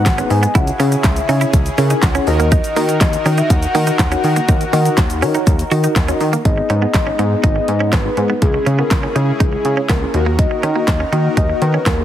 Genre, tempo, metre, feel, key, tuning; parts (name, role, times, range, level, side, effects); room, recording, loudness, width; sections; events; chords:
dance-pop; 122 BPM; 4/4; straight; G# minor; A4 = 439 Hz
soft octave-layered synth lead; melody; 0.0-12.0 s; G#4 to G#5; -22 LUFS; left 2 dB; chorus, ping-pong delay
mellow tine electric piano; accompaniment; 0.0-12.0 s; A#3 to G#5; -22 LUFS; left 1 dB; medium stereo tremolo, sidechain pumping
soft supersaw; sustained chords; 0.0-12.0 s; C#3 to A#4; -26 LUFS; equal; phaser, sidechain pumping
chorused synth bass; bass; 0.0-12.0 s; G#1 to D#3; -17 LUFS; equal; sidechain pumping
pop drum kit; drums; 0.1-12.0 s; handclaps, hi-hat, kick drum, shaker, snare drum; -17 LUFS; equal
direct-recorded clean electric guitar; riff; 0.2-11.9 s; A#3 to F#4; -24 LUFS; right 6 dB; analog chorus
little or no reverb; heavily compressed radio sound, multiband compression; -13 LUFS; side -11 dB against mid
0.0-6.5 A section; 6.5-12.0 B section
tine electric piano fill 1.5-2.5
0.0 G#m; 0.6 C#m; 2.3 D#m; 6.5 G#m; 8.4 C#m; 10.1 D#m